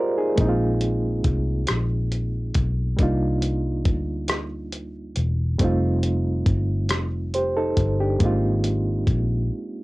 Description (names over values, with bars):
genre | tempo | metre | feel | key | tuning
slow six-eight R&B | 46 BPM (dotted quarters) | 6/8 | straight | C minor | A4 = 440 Hz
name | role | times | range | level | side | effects
reed electric piano | accompaniment | 0.0-9.8 s | G3 to F5 | -25 LUFS | right 1 dB | fast tremolo, cassette tape
vintage muted fingered electric bass | bass | 0.4-9.5 s | E1 to D2 | -24 LUFS | equal | none
dusty soul sampler-style drum kit | drums | 0.4-9.3 s | hi-hat, kick drum, rim click | -23 LUFS | equal | cassette tape
room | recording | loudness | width
light reverb | home recording on cassette | -20 LUFS | side -20 dB against mid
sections
0.0-9.8 A section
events
break 9.5-9.8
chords
0.4 Bb9sus4; 3.0 Cm11; 5.6 F9; 8.2 Ab69